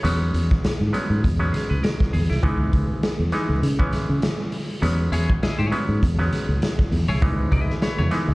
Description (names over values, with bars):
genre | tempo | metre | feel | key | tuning
funk | 100 BPM | 4/4 | swing 56% on 16ths | unclear | A4 = 445 Hz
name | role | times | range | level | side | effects
clav | stabs | 0.0-8.3 s | E3 to C#5 | -27 LUFS | right 1 dB | slapback echo
fingered electric bass | bass | 0.0-8.3 s | B#1 to C#3 | -21 LUFS | equal | none
raw garage drum kit | drums | 0.0-8.3 s | hi-hat, kick drum, snare drum | -23 LUFS | equal | none
clean electric guitar | accompaniment | 5.1-8.2 s | E4 to D#5 | -28 LUFS | left 2 dB | harmonic tremolo, slapback echo
congas | percussion | 7.2-8.3 s | none | -30 LUFS | right 2 dB | none
room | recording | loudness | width
little or no reverb | live gig heard through the venue's PA, club reverb, vinyl crackle, nothing above 11.0 kHz | -19 LUFS | side -22 dB against mid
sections
0.0-8.3 A section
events
break 0.0-4.8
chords
0.0 E6; 2.4 C#m7; 4.8 E6; 7.2 C#m7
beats
| 0.04 0.64 1.24 1.84 | 2.44 3.03 3.63 4.23 | 4.83 5.43 6.02 6.62 | 7.22 7.82